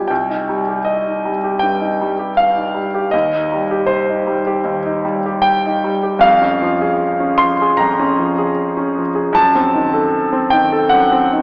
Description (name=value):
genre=classical, romantic character piece for solo piano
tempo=77 BPM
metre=4/4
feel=rubato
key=C minor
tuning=A4 = 441 Hz
part: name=warm concert grand piano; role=solo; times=0.0-11.4 s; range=B1 to C6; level=-16 LUFS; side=equal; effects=none
room=wet church reverb, RT60 3.4 s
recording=recorded in a church or concert hall, AM radio sound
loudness=-16 LUFS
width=mono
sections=0.0-11.4 A section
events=none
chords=0.1 Cm; 3.1 Cm/Eb; 6.2 Db/F; 9.4 F#dim7